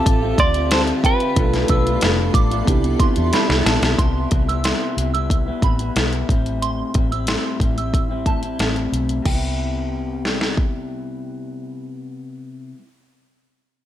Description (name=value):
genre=indie pop, bedroom pop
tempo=91 BPM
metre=4/4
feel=straight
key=C major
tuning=A4 = 440 Hz
part: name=clean electric guitar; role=melody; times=0.0-2.3 s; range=A4 to D5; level=-23 LUFS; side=equal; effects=wide subtle chorus, tape echo
part: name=electric guitar through a small old amp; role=accompaniment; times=0.0-12.8 s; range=A2 to F4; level=-25 LUFS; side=left 4 dB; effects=wide subtle chorus, vibrato effect
part: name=mellow tine electric piano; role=accompaniment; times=0.0-4.0 s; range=B3 to E5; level=-26 LUFS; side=right 5 dB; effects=cassette tape
part: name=granular cloud pad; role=sustained chords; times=0.0-4.0 s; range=F4 to A5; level=-31 LUFS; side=equal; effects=built-in reverb
part: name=vintage muted fingered electric bass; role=bass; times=0.1-12.7 s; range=F1 to E2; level=-23 LUFS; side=equal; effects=none
part: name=pop drum kit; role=drums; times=0.1-10.7 s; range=crash cymbal, hi-hat, kick drum, snare drum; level=-19 LUFS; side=equal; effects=none
part: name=soft synth bell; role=second line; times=0.4-11.2 s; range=G5 to E6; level=-28 LUFS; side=right 6 dB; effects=tremolo, analog chorus, tape echo
room=light reverb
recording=none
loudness=-17 LUFS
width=side -12 dB against mid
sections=0.0-4.0 A section; 4.0-9.3 B section; 9.3-11.9 C section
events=drum fill 3.3-4.0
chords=0.0 Dm11; 1.4 Bm7b5; 2.7 Cmaj7; 4.0 Am7; 9.3 Cmaj7